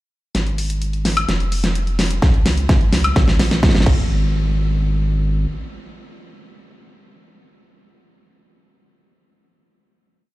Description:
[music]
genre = EDM, festival progressive house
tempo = 128 BPM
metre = 4/4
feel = straight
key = unclear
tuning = A4 = 435 Hz
[part]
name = saturated sub bass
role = bass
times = 0.3-5.5 s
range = F1 to Db2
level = -20 LUFS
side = equal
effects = sidechain pumping
[part]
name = big-room dance drum kit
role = drums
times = 0.3-4.0 s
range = crash cymbal, hi-hat, snare drum, woodblock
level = -20 LUFS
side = equal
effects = none
[part]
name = electronic kick drum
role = drums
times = 2.2-4.0 s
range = none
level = -15 LUFS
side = equal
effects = none
[sound]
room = light reverb, digital ambience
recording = played on a big sound system in a bare room, large studio reverb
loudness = -15 LUFS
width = side -18 dB against mid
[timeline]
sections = 0.3-4.1 build; 4.1-7.8 final hit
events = build-up 0.3-4.1; drum fill 0.3-4.1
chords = none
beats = | 0.35 0.82 1.29 1.75 | 2.22 2.69 3.16 3.63 | 4.10 4.57 5.04

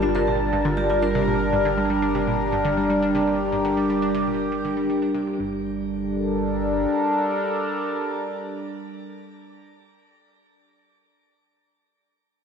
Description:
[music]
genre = ambient, sequencer-driven space music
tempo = 120 BPM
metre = 4/4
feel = straight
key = G minor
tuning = A4 = 441 Hz
[part]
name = sweeping resonant pad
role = sustained chords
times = 0.0-10.1 s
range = G3 to A5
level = -22 LUFS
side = equal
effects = chorus, phaser, shimmer reverb
[part]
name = vibraphone with medium hard mallets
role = arpeggios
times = 0.0-1.2 s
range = F4 to Bb4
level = -27 LUFS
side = left 1 dB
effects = auto-pan, analog delay, shimmer reverb
[part]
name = analog pluck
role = riff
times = 0.0-5.6 s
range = G2 to D4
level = -29 LUFS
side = left 1 dB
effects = chorus, analog delay, shimmer reverb
[part]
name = warm sub bass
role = bass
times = 0.0-6.9 s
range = G1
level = -32 LUFS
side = equal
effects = none
[sound]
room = wet plate reverb, RT60 2.3 s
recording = dreamy mix soaked in reverb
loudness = -21 LUFS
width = side -6 dB against mid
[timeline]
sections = 0.0-5.4 A section; 5.4-9.4 B section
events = fade-out on synth arpeggio sound 0.0-5.4; fade-out on sub bass 0.0-5.4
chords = 0.0 Gm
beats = 0.40 0.90 | 1.40 1.90 2.40 2.90 | 3.40 3.90 4.40 4.90 | 5.40 5.90 6.40 6.90 | 7.40 7.90 8.40 8.90

